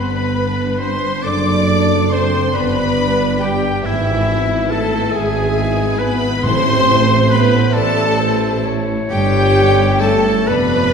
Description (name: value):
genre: classical, slow romantic movement for symphony orchestra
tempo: 46 BPM (dotted quarters)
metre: 6/8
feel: rubato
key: A minor from 3.8 s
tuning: A4 = 441 Hz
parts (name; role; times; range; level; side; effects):
- warm symphonic violin section; melody; 0.0-10.9 s; E5 to D6; -23 LUFS; left 4 dB; none
- dark clarinet; second line; 0.0-10.9 s; A4 to E5; -25 LUFS; equal; none
- rich symphonic violin section; second line; 0.0-10.9 s; A3 to E4; -28 LUFS; left 4 dB; none
- silver concert flute; second line; 0.0-10.9 s; E5 to D6; -24 LUFS; left 1 dB; none
- warm oboe; second line; 0.0-10.9 s; E4 to D5; -24 LUFS; equal; none
- clear studio viola section; accompaniment; 0.0-10.9 s; E4 to D5; -21 LUFS; left 1 dB; none
- mellow French horn section; sustained chords; 0.0-10.9 s; E3 to D4; -22 LUFS; left 1 dB; none
- mellow tuba; bass; 0.0-10.9 s; F1 to A1; -23 LUFS; right 3 dB; none
- rich symphonic cello section; bass; 0.0-10.9 s; F2 to A2; -22 LUFS; right 1 dB; none
- rich symphonic double bass section; bass; 0.0-10.9 s; F1 to A1; -23 LUFS; right 4 dB; none
- timpani; percussion; 6.4-7.7 s; A2; -24 LUFS; equal; none
room: wet concert hall reverb, RT60 2.1 s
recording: heard from further back in the room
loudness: -13 LUFS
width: side -6 dB against mid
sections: 0.0-10.9 A section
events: none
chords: 0.0 G; 1.2 D/F#; 2.5 G; 3.8 E/G#; 6.4 Am; 9.1 A7/G